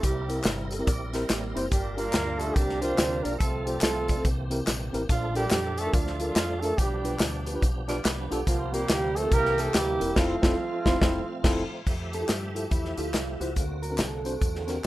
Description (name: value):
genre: uptempo gospel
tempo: 142 BPM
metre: 4/4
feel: swing 63% on 8ths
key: F major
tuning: A4 = 437 Hz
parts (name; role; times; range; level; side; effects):
- mellow horn section; melody; 0.0-11.7 s; F3 to C5; -29 LUFS; right 2 dB; none
- tine electric piano; accompaniment; 0.0-14.8 s; G2 to D5; -32 LUFS; left 1 dB; none
- tonewheel organ; sustained chords; 0.0-14.9 s; D3 to E5; -38 LUFS; right 2 dB; slow rotary speaker, overdrive, chorus vibrato
- deep dub fingered electric bass; bass; 0.0-14.9 s; E1 to G2; -34 LUFS; equal; none
- modern studio drum kit; drums; 0.0-14.9 s; crash cymbal, hi-hat, kick drum, snare drum; -27 LUFS; equal; none
- tambourine and handclaps; percussion; 0.0-14.9 s; none; -38 LUFS; left 2 dB; none
- clean electric guitar; second line; 0.9-1.7, 7.9-8.7 s; Bb3 to D5; -38 LUFS; right 5 dB; phaser
- mellow electric guitar; melody; 12.1-14.9 s; E4 to Bb4; -35 LUFS; right 2 dB; spring reverb, tape echo
room: small room ambience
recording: rough home demo mix, lossy compression artefacts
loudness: -24 LUFS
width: side -16 dB against mid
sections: 0.0-11.9 A section; 11.9-14.9 B section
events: band accent 10.2-11.9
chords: 0.0 C7; 1.7 Gm7; 2.6 C9sus4; 3.4 F/C; 4.2 C7; 5.1 Bbmaj7; 6.8 G7/B; 8.5 C7sus4; 9.3 C7; 10.2 Fmaj7; 11.9 Fmaj9; 13.6 D7b13